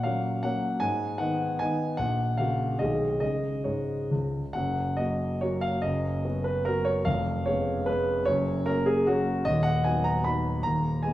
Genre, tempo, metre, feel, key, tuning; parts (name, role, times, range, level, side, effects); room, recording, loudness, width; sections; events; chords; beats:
classical, romantic triple-time dance for piano with dotted rhythms; 128-165 BPM; 3/4; rubato; F# major; A4 = 439 Hz
warm concert grand piano; solo; 0.0-11.1 s; D#1 to B5; -25 LUFS; equal
wet recital hall reverb, RT60 1.7 s; heard from further back in the room; -25 LUFS; side -14 dB against mid
0.0-4.6 A section; 4.6-11.1 B section
0.0 F#/A#; 0.8 G#m; 2.0 F#/A#; 2.8 G#m/B; 3.2 C#5; 4.6 F#; 5.8 B/F#; 7.1 C#7/E#; 8.3 F#; 9.5 B/D#
0.05 0.44 | 0.81 1.20 1.60 | 1.99 2.40 2.80 | 3.22 3.67 4.13 | 4.56 5.00 5.43 | 5.83 6.25 6.66 | 7.05 7.46 7.88 | 8.26 8.67 9.07 | 9.46 9.85 10.26 | 10.64 11.04